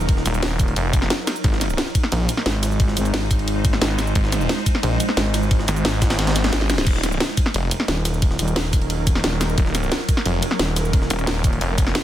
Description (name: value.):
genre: dark technical drum and bass.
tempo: 177 BPM.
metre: 4/4.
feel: straight.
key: Eb dorian.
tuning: A4 = 437 Hz.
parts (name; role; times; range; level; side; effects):
swarming drone; sustained chords; 0.0-12.0 s; Gb3 to C5; -27 LUFS; right 1 dB; built-in reverb, sidechain pumping.
growling FM bass; bass; 0.0-5.7, 7.9-11.6 s; Eb1 to Ab1; -22 LUFS; equal; none.
drum and bass drum kit; drums; 0.0-12.0 s; crash cymbal, hi-hat, shaker, snare drum; -23 LUFS; equal; none.
breakbeat sampler-style drum kit; drums; 0.1-12.0 s; ride cymbal, snare drum; -30 LUFS; right 1 dB; high-pass filter on cymbals, high-pass filter on snare.
electronic kick drum; drums; 0.1-11.8 s; none; -19 LUFS; equal; none.
snarling distorted saw bass; bass; 0.3-11.9 s; Eb1 to Bb1; -22 LUFS; equal; distortion.
room: little or no reverb.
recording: dense, heavily limited modern master.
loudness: -18 LUFS.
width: side -12 dB against mid.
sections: 0.0-12.0 A section.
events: kick drops out 6.2-6.9; drum fill 6.6.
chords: 0.0 Ebm; 1.4 Ab; 6.9 Ebm.